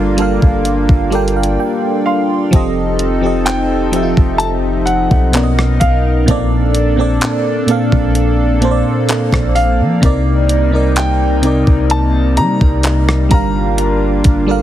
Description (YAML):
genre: contemporary R&B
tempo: 64 BPM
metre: 4/4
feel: straight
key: unclear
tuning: A4 = 440 Hz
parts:
  - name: FM electric piano with soft pad layer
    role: accompaniment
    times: 0.0-14.6 s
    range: Bb2 to C6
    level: -16 LUFS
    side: right 1 dB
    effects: chorus
  - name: chorused pulse-width pad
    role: sustained chords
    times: 0.0-14.6 s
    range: C3 to A#4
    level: -19 LUFS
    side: left 2 dB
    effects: none
  - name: warm 808-style bass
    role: bass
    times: 0.0-14.6 s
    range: F1 to G3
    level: -16 LUFS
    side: equal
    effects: none
  - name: crisp 8-bit digital drum machine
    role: drums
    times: 0.2-14.5 s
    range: handclaps, hi-hat, kick drum, rim click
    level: -14 LUFS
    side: equal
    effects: none
  - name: clear concert grand piano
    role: melody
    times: 2.1-14.2 s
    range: F5 to Bb5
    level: -20 LUFS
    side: equal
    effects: ping-pong delay
room: little or no reverb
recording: heavily compressed radio sound, multiband compression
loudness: -11 LUFS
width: side -12 dB against mid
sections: 0.0-2.5 A section; 2.5-14.6 A section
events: FM electric piano fill 0.7-2.5; drums muted 1.6-2.5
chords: 0.0 Gm7; 2.5 F7; 5.3 Bmaj7; 6.3 Bbmaj7; 10.0 Cm7; 13.3 Gm7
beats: 0.66 1.59 | 2.53 3.47 4.41 5.34 | 6.28 7.22 8.15 9.09 | 10.03 10.97 11.90 12.84 | 13.78